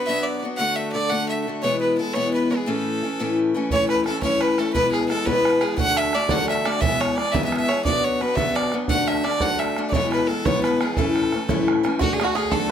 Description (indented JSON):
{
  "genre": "celtic folk, Celtic jig",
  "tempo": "116 BPM (dotted quarters)",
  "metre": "6/8",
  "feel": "straight",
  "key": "A major",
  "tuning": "A4 = 440 Hz",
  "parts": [
    { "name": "clear fiddle", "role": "melody", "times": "0.0-12.7 s", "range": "F#4 to F#5", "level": "-23 LUFS", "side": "right 1 dB", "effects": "none" },
    { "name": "picked old ladder-braced acoustic guitar", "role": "accompaniment", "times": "0.0-12.7 s", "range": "E2 to G#4", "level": "-23 LUFS", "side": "left 2 dB", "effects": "none" },
    { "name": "bodhran", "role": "percussion", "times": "3.7-12.6 s", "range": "none", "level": "-26 LUFS", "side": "right 3 dB", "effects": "none" },
    { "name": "bluegrass banjo", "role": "second line", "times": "12.0-12.7 s", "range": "F#4 to A4", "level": "-26 LUFS", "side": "right 5 dB", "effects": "none" }
  ],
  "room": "moderate small room reverb, RT60 0.5 s",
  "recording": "none",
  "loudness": "-19 LUFS",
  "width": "side -9 dB against mid",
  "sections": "0.0-3.7 A section; 3.7-12.0 A section",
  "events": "none",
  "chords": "0.0 Bm; 0.6 D; 1.6 E; 2.7 A; 4.7 E; 5.8 D; 6.8 E; 7.8 Bm; 8.9 D; 9.9 E; 11.0 A; 12.0 D"
}